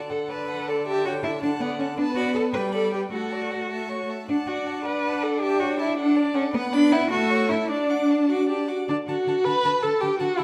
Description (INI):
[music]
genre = quick classical-period movement for string quartet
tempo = 105 BPM (dotted quarters)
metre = 6/8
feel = rubato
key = D major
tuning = A4 = 440 Hz
[part]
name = rich violin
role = melody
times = 0.0-10.4 s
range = F#5 to D6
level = -38 LUFS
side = equal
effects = none
[part]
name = warm violin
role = second line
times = 0.0-10.4 s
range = A4 to B5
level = -35 LUFS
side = equal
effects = none
[part]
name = warm viola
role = accompaniment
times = 0.0-10.4 s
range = D3 to B4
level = -29 LUFS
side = equal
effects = none
[part]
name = rich cello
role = bass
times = 0.1-10.4 s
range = D3 to B4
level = -27 LUFS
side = equal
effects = none
[sound]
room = wet recital hall reverb, RT60 1.4 s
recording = none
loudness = -24 LUFS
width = mono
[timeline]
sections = 0.0-8.9 A section; 8.9-10.4 A section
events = none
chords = 0.0 D; 0.9 A7/D; 1.4 D; 2.0 Bm7; 2.5 G; 3.1 D/A; 4.3 D; 5.4 A7/D; 6.0 D; 6.5 Bm; 7.1 A; 7.7 D